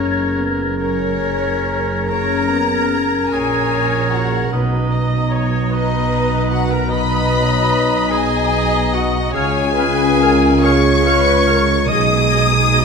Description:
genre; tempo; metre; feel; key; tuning
cinematic, emotional film score for orchestra; 45-51 BPM (dotted quarters); 6/8; rubato; F# major; A4 = 440 Hz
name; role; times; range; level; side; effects
bright oboe; second line; 0.0-12.8 s; A#4 to E#5; -27 LUFS; right 2 dB; none
large flute ensemble; second line; 0.0-12.8 s; A#5 to G#6; -26 LUFS; left 2 dB; none
clear studio viola section; accompaniment; 0.0-12.8 s; B3 to D#5; -24 LUFS; right 1 dB; none
warm French horn section; sustained chords; 0.0-12.8 s; G#3 to A#4; -23 LUFS; left 2 dB; none
concert harp; arpeggios; 0.0-12.8 s; F#2 to F#5; -23 LUFS; left 7 dB; none
dark studio cello section; bass; 0.0-12.8 s; F#2 to C#3; -23 LUFS; right 5 dB; none
rich symphonic double bass section; bass; 0.0-12.8 s; F#1 to C#2; -22 LUFS; right 4 dB; none
rich studio violin section; melody; 0.8-12.8 s; C#5 to D#6; -23 LUFS; left 3 dB; none
bright clarinet; second line; 0.8-12.8 s; C#4 to D#5; -23 LUFS; left 1 dB; none
rich studio violin section; second line; 0.8-12.8 s; C#5 to D#6; -24 LUFS; left 3 dB; none
room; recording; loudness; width
wet scoring stage reverb, RT60 1.6 s; dark, warm production; -14 LUFS; side -5 dB against mid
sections
0.0-12.8 A section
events
none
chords
0.0 F#add9; 4.5 Bmaj7; 9.4 C#; 11.9 G#m/B

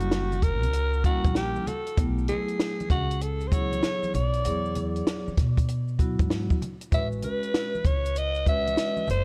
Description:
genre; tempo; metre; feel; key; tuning
hip hop, jazz-hop; 97 BPM; 4/4; swing 65% on 16ths; unclear; A4 = 438 Hz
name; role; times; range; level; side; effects
growling alto saxophone; melody; 0.0-9.2 s; F#4 to E5; -32 LUFS; equal; tape echo
vibraphone with soft mallets; accompaniment; 0.0-9.1 s; F#3 to B4; -35 LUFS; equal; none
upright bass; bass; 0.0-9.2 s; F#1 to B2; -31 LUFS; equal; none
compact cocktail drum kit; drums; 0.0-9.2 s; hi-hat, kick drum, snare drum; -28 LUFS; equal; none
maracas and congas; percussion; 0.0-9.2 s; none; -41 LUFS; equal; none
room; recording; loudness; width
small room ambience; worn, warbling old tape, cassette tape, warbly pitch drift; -26 LUFS; mono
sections
0.0-9.2 A section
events
none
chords
0.0 F#7b9; 2.0 B9sus4; 4.4 E9; 6.9 Amaj9 (rootless)

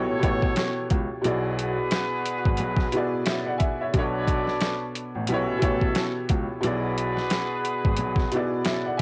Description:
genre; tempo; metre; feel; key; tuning
hip hop, boom-bap hip-hop; 89 BPM; 4/4; swing 57% on 16ths; unclear; A4 = 442 Hz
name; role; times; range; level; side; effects
warm upright piano; accompaniment; 0.0-9.0 s; B2 to G#5; -30 LUFS; equal; cassette tape
mellow horn section; stabs; 0.0-8.9 s; C#4 to D5; -33 LUFS; equal; cassette tape, analog delay
dark baby grand piano; bass; 0.0-8.2 s; G#1 to C#2; -33 LUFS; equal; tube saturation
boom bap sampler-style drum kit; drums; 0.2-9.0 s; hi-hat, kick drum, snare drum; -28 LUFS; equal; vintage 12-bit sampler grit, cassette tape
room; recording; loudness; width
light reverb; home recording on cassette; -25 LUFS; mono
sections
0.0-9.0 A section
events
none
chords
0.0 A7; 1.2 E9; 3.9 Bm7; 5.3 A7; 6.6 E9

